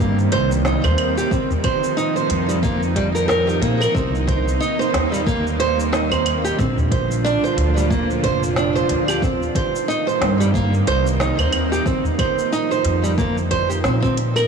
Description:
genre	organic downtempo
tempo	91 BPM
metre	4/4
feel	swing 57% on 16ths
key	unclear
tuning	A4 = 440 Hz
part	bowed-like drone	sustained chords	0.0-14.5 s	Bb2 to F4	-23 LUFS	right 2 dB	built-in reverb, sidechain pumping
part	nylon-string guitar	arpeggios	0.0-14.5 s	G3 to C5	-21 LUFS	right 3 dB	digital delay
part	upright bass	bass	0.0-14.4 s	F1 to Bb2	-22 LUFS	equal	tube saturation, sidechain pumping
part	organic electronic drum kit	drums	0.0-14.5 s	claves, hi-hat, shaker, snare drum	-27 LUFS	right 1 dB	studio reverb
part	udu	percussion	0.8-1.6, 6.1-6.9, 11.4-12.2 s	none	-24 LUFS	left 1 dB	none
part	electronic kick drum	drums	1.3-14.1 s	none	-24 LUFS	equal	studio reverb
room	moderate huge ambient reverb, RT60 3.9 s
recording	blown-out, overdriven recording, overdrive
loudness	-17 LUFS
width	side -6 dB against mid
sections	0.0-14.5 A section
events	none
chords	0.0 Eb6; 1.3 F5; 4.0 Cm7; 6.6 Bb; 9.2 Eb6; 11.9 F5

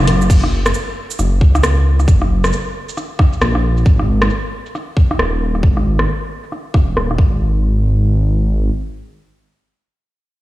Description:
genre	future garage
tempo	135 BPM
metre	4/4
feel	swing 62% on 16ths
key	unclear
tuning	A4 = 439 Hz
part	dark detuned saw bass	bass	0.0-8.7 s	D#1 to C#2	-14 LUFS	equal	sidechain pumping
part	garage drum kit	drums	0.1-7.2 s	crash cymbal, hi-hat, rim click, shaker	-20 LUFS	equal	low-pass filter on hats, low-pass filter on snare, low-pass filter on perc, low-pass filter on cymbals, low-pass filter on room
part	electronic kick drum	drums	0.3-7.3 s	none	-11 LUFS	equal	none
room	light reverb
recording	played on a big sound system in a bare room, stone room reverb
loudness	-13 LUFS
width	side -16 dB against mid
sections	0.3-7.4 A section; 7.4-10.4 B section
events	filter sweep on drum 0.3-7.4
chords	none

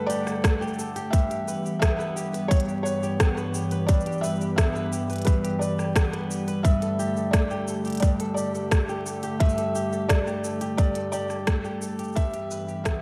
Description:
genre	folktronica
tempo	87 BPM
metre	4/4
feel	straight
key	G major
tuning	A4 = 440 Hz
part	felt-muted upright piano	melody	0.0-13.0 s	B4 to E5	-34 LUFS	equal	analog delay
part	warbly tape-like pad	sustained chords	0.0-13.0 s	G2 to F#5	-32 LUFS	equal	chorus, built-in reverb
part	flamenco guitar	arpeggios	0.0-13.0 s	G2 to B4	-35 LUFS	equal	analog delay
part	organic electronic drum kit	drums	0.1-13.0 s	hi-hat, rim click, shaker	-33 LUFS	equal	overdrive
part	electronic kick drum	drums	0.4-13.0 s	none	-24 LUFS	equal	overdrive
room	moderate lush hall reverb, RT60 2.0 s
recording	dreamy mix soaked in reverb, vinyl crackle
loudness	-25 LUFS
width	mono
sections	0.0-13.0 A section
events	fade-out 10.3-13.0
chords	0.0 Gsus2; 1.1 Em/G; 6.6 Gsus2; 12.2 Em/G

